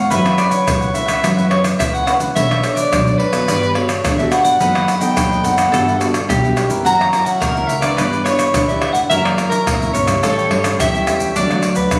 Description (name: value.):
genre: samba and choro.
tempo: 107 BPM.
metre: 4/4.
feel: straight.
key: unclear.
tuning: A4 = 440 Hz.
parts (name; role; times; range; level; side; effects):
warm soprano saxophone; melody; 0.0-12.0 s; A#4 to A#5; -20 LUFS; equal; plate reverb.
mandolin; second line; 0.0-12.0 s; D4 to D5; -25 LUFS; equal; none.
cavaquinho; accompaniment; 0.0-12.0 s; D4 to G5; -29 LUFS; equal; none.
nylon-string guitar; accompaniment; 0.0-12.0 s; A2 to C#5; -23 LUFS; equal; none.
upright bass; bass; 0.0-12.0 s; E#1 to G2; -26 LUFS; equal; none.
tube shaker, surdo, pandeiro and tamborim; percussion; 0.1-12.0 s; none; -22 LUFS; equal; none.
room: moderate large studio reverb, RT60 0.9 s.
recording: recorded on a phone in the room, studio reverb, compression.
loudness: -16 LUFS.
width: mono.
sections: 0.0-11.4 A section.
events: none.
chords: 0.1 F#7sus4; 2.4 Bm9; 3.5 Gmaj9; 4.6 B7/F#; 5.7 Em9/G; 6.9 F#7; 8.0 G6; 9.1 F#7; 10.2 A7; 11.4 D.